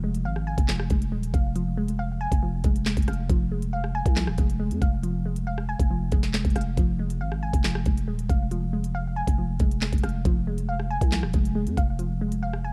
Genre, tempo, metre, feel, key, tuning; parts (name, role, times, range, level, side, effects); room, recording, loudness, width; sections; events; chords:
hip hop, drill; 138 BPM; 4/4; half-time; F minor; A4 = 442 Hz
glassy wavetable pluck; arpeggios; 0.0-12.7 s; F3 to Ab5; -32 LUFS; equal; chorus, slapback echo
growling 808-style bass; bass; 0.0-12.7 s; Eb1 to F2; -30 LUFS; equal
drill drum kit; drums; 0.1-12.6 s; handclaps, hi-hat, kick drum, rim click, snare drum; -26 LUFS; equal
little or no reverb; dark, warm production; -26 LUFS; mono
0.0-12.7 A section
0.0 Fm